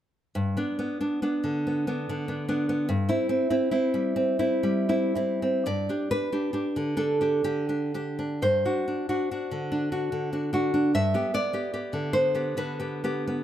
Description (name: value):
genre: romantic piece for solo classical guitar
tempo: 36-51 BPM (dotted quarters)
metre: 6/8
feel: rubato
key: G major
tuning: A4 = 440 Hz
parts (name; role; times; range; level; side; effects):
- nylon-string guitar; solo; 0.4-13.4 s; G2 to E5; -24 LUFS; equal; none
room: light reverb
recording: close, detailed microphones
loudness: -24 LUFS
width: side -11 dB against mid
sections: 0.3-5.7 A section; 5.7-13.4 B section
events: none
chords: 0.3 G (rootless); 2.9 C/G; 5.7 G; 8.4 D7/G; 10.9 G